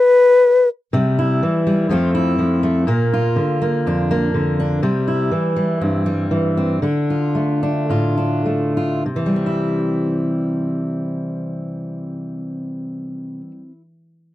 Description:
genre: folk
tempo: 99-124 BPM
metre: 4/4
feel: straight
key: C mixolydian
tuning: A4 = 440 Hz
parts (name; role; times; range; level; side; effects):
- breathy mellow round clay ocarina; melody; 0.0-0.7 s; B4; -9 LUFS; left 2 dB; none
- fingerpicked steel-string acoustic guitar; accompaniment; 0.9-13.8 s; F2 to F4; -17 LUFS; equal; none
room: light reverb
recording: dry, close 1970s-style studio recording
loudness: -16 LUFS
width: side -15 dB against mid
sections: 0.9-9.1 A section; 9.1-13.9 B section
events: slowing down 4.8-9.1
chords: 0.0 N.C.; 0.9 C; 1.9 F; 2.9 Bb; 4.8 C; 6.8 Dm; 9.1 C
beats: 0.45 | 0.93 1.42 1.90 2.39 | 2.87 3.36 3.85 4.33 | 4.82 5.30 5.80 6.30 | 6.82 7.34 7.89 8.46 | 9.05 9.66 10.27 10.88 | 11.48 12.09 12.70 13.31

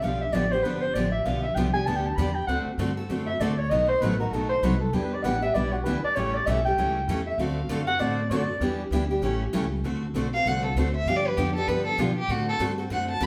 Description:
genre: acoustic string swing (jazz manouche)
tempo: 196 BPM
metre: 4/4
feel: swing 60% on 8ths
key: D mixolydian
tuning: A4 = 438 Hz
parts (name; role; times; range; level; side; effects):
- breathy soprano saxophone; second line; 0.0-8.8 s; F#4 to B5; -29 LUFS; equal; none
- picked steel-string acoustic guitar; accompaniment; 0.0-13.3 s; B2 to A4; -33 LUFS; equal; none
- picked steel-string acoustic guitar; accompaniment; 0.0-13.3 s; B2 to B4; -34 LUFS; equal; none
- upright bass; bass; 0.0-13.3 s; G1 to B2; -32 LUFS; equal; none
- warm violin; melody; 10.3-13.3 s; F4 to B5; -28 LUFS; equal; none
room: wet large studio reverb, RT60 0.9 s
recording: band playing live in one room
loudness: -26 LUFS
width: mono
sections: 0.0-9.8 A section; 9.8-13.3 A section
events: soprano saxophone solo 0.0-9.8; violin solo 9.8-13.3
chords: 0.0 G7; 2.5 D7; 3.7 B7b9; 4.9 Em7; 6.2 A7; 7.4 D7; 8.6 Em7; 9.2 A7; 9.8 D7; 11.1 G7; 12.3 D7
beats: | 0.03 0.33 0.64 0.95 | 1.25 1.56 1.87 2.17 | 2.48 2.79 3.10 3.40 | 3.71 4.01 4.32 4.63 | 4.93 5.24 5.55 5.86 | 6.16 6.47 6.78 7.08 | 7.39 7.70 8.00 8.31 | 8.61 8.92 9.23 9.53 | 9.84 10.15 10.45 10.76 | 11.07 11.37 11.68 11.99 | 12.29 12.60 12.90 13.21

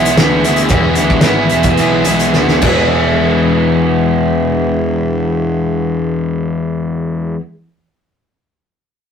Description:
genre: rock, shoegaze and dream pop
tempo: 102-117 BPM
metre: 4/4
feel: straight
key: E major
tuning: A4 = 440 Hz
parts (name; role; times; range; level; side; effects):
- picked twelve-string acoustic guitar; arpeggios; 0.0-7.4 s; E3 to G#4; -23 LUFS; right 4 dB; none
- biting overdriven guitar; riff; 0.0-7.4 s; E3 to E4; -17 LUFS; right 4 dB; none
- crunchy overdriven guitar; riff; 0.0-7.4 s; E3 to E4; -16 LUFS; left 6 dB; none
- fuzz picked electric bass; bass; 0.0-7.3 s; E1 to D2; -20 LUFS; equal; overdrive
- loose indie drum kit; drums; 0.1-2.8 s; crash cymbal, hi-hat, kick drum, snare drum; -16 LUFS; equal; none
room: moderate studio reverb, RT60 0.6 s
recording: rough rehearsal-room recording, warm saturation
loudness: -11 LUFS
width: side -7 dB against mid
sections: 0.0-2.9 A section; 2.9-7.6 B section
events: slowing down 0.0-2.9; drum fill 2.4-2.9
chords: 0.0 E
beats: 0.20 | 0.72 1.25 1.80 2.35 | 2.93 3.52 4.11 4.70 | 5.29 5.88 6.46 7.05

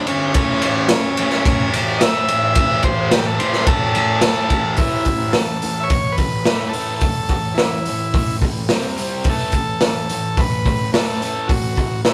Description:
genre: garage rock duo or trio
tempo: 108 BPM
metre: 4/4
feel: straight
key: A mixolydian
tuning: A4 = 440 Hz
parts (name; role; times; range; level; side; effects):
- overdriven combo organ; melody; 0.0-12.1 s; C#4 to E5; -24 LUFS; equal; none
- fuzz guitar; riff; 0.0-12.1 s; G2 to C4; -26 LUFS; equal; distortion
- raw garage drum kit; drums; 0.1-12.1 s; hi-hat, kick drum, ride cymbal, snare drum; -20 LUFS; equal; none
room: light reverb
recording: rough rehearsal-room recording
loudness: -18 LUFS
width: mono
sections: 0.0-4.8 A section; 4.8-12.1 B section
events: transistor combo organ solo 0.0-4.8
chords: 0.4 A5; 8.7 C5; 9.3 A5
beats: | 0.36 0.92 1.47 2.02 | 2.58 3.13 3.68 4.24 | 4.79 5.35 5.91 6.47 | 7.02 7.58 8.14 8.70 | 9.27 9.83 10.39 10.95 | 11.51 12.07

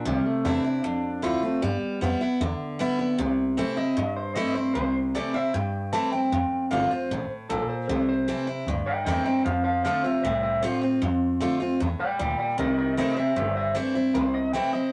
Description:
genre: rockabilly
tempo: 153 BPM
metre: 4/4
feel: straight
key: C major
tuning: A4 = 445 Hz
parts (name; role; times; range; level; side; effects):
- electric guitar through a small old amp; melody; 0.0-14.9 s; G3 to A5; -31 LUFS; equal; none
- picked steel-string acoustic guitar; accompaniment; 0.0-14.9 s; F2 to F4; -28 LUFS; equal; none
- upright bass; bass; 0.1-14.8 s; G1 to G2; -33 LUFS; equal; none
room: moderate studio reverb, RT60 0.7 s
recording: none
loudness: -26 LUFS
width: mono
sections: 0.0-3.2 A section; 3.2-14.9 B section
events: clean electric guitar solo 3.2-14.9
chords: 0.1 C6; 0.8 F6; 1.6 G6; 3.2 C6; 6.3 F6; 7.9 C6; 9.5 F6; 12.6 C6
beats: | 0.06 0.45 0.84 1.23 | 1.62 2.01 2.40 2.79 | 3.19 3.58 3.97 4.36 | 4.75 5.14 5.54 5.93 | 6.32 6.71 7.10 7.50 | 7.89 8.28 8.67 9.06 | 9.45 9.84 10.24 10.63 | 11.02 11.41 11.80 12.19 | 12.58 12.97 13.37 13.76 | 14.15 14.54

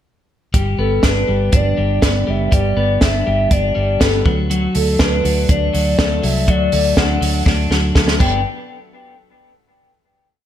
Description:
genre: jangly indie pop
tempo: 121 BPM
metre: 4/4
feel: straight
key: G major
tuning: A4 = 440 Hz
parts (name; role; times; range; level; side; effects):
- twelve-string electric guitar; arpeggios; 0.5-8.4 s; F#3 to G4; -20 LUFS; left 1 dB; wide subtle chorus, tape echo
- vintage muted fingered electric bass; bass; 0.5-8.4 s; F#1 to D2; -19 LUFS; equal; none
- compact cocktail drum kit; drums; 0.5-8.3 s; crash cymbal, hi-hat, kick drum, snare drum; -17 LUFS; equal; none
- hollow clarinet-like synth lead; melody; 0.8-8.4 s; A4 to G5; -21 LUFS; left 2 dB; chorus, tape echo
room: moderate plate reverb, RT60 1.1 s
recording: dreamy mix soaked in reverb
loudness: -13 LUFS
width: side -10 dB against mid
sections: 0.5-8.5 verse; 8.5-10.4 final hit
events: drum fill 7.5-8.5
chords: 0.5 G; 4.3 D; 8.2 G; 8.5 N.C.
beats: | 0.54 1.03 1.53 2.03 | 2.52 3.02 3.51 4.01 | 4.50 5.00 5.49 5.99 | 6.48 6.97 7.47 7.96

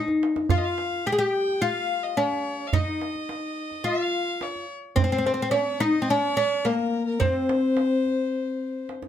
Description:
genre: Persian modal ensemble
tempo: 107 BPM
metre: 4/4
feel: straight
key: C dastgah shur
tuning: A4 = 440 Hz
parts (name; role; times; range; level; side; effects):
- oud; melody; 0.0-8.8 s; Bb3 to Ab4; -24 LUFS; left 1 dB; none
- tombak; percussion; 0.1-9.1 s; none; -27 LUFS; right 5 dB; none
- rich violin; second line; 0.5-8.9 s; Bb4 to G5; -30 LUFS; left 4 dB; none
room: light reverb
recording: close, detailed microphones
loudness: -22 LUFS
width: side -10 dB against mid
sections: 0.0-9.1 A section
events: drum fill 0.0-0.5, 8.9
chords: none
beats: | 0.51 1.06 1.62 2.18 | 2.74 3.29 3.85 4.41 | 4.97 5.53 6.09 6.65 | 7.21 7.77 8.32 8.88

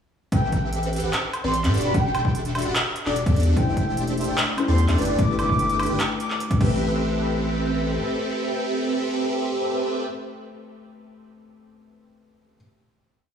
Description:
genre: future bass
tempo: 148 BPM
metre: 4/4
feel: half-time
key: A minor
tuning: A4 = 438 Hz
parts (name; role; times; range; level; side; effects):
- breathy flute-like synth lead; melody; 0.3-6.4 s; D5 to D6; -29 LUFS; equal; wide subtle chorus, sidechain pumping, dub echo
- supersaw chords; riff; 0.3-10.0 s; C4 to G5; -26 LUFS; right 1 dB; wide subtle chorus, sidechain pumping, dub echo
- saturated sub bass; bass; 0.3-8.0 s; E1 to A2; -25 LUFS; equal; sidechain pumping
- big-room dance drum kit; drums; 0.3-6.7 s; crash cymbal, handclaps, hi-hat, woodblock; -28 LUFS; equal; overdrive
- electronic kick drum; drums; 0.3-6.7 s; none; -23 LUFS; equal; overdrive
- felt-muted upright piano; accompaniment; 3.5-12.6 s; A3 to C5; -29 LUFS; left 3 dB; sidechain pumping, dub echo
room: moderate lush hall reverb, RT60 1.7 s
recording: played on a big sound system in a bare room, large studio reverb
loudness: -20 LUFS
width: side -8 dB against mid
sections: 0.3-6.8 drop; 6.8-10.1 final hit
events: drop 0.3-6.8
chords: 0.3 Am9; 1.7 Em11; 3.6 C69/E; 5.0 G69; 6.6 Am9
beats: | 0.32 0.73 1.13 1.54 | 1.94 2.35 2.75 3.16 | 3.56 3.97 4.38 4.78 | 5.19 5.59 6.00 6.40 | 6.81 7.21 7.62 8.02 | 8.43 8.84 9.24 9.65

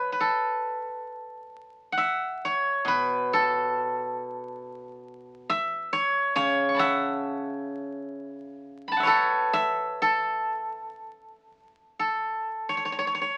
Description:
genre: chinese traditional, Chinese solo plucked strings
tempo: 67 BPM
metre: 4/4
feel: rubato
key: A gong mode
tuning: A4 = 442 Hz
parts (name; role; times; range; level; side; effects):
- steel-string zither; solo; 0.0-13.4 s; B2 to C#6; -27 LUFS; equal; none
room: moderate club reverb, RT60 0.6 s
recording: very old 78 rpm record, vinyl crackle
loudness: -27 LUFS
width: mono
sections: 0.0-12.0 A section; 12.0-13.4 B section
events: none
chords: none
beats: 0.18 | 1.08 1.99 2.86 3.74 | 4.62 5.50 6.37 7.27 | 8.17 9.08 10.02 10.99 | 11.96 12.90

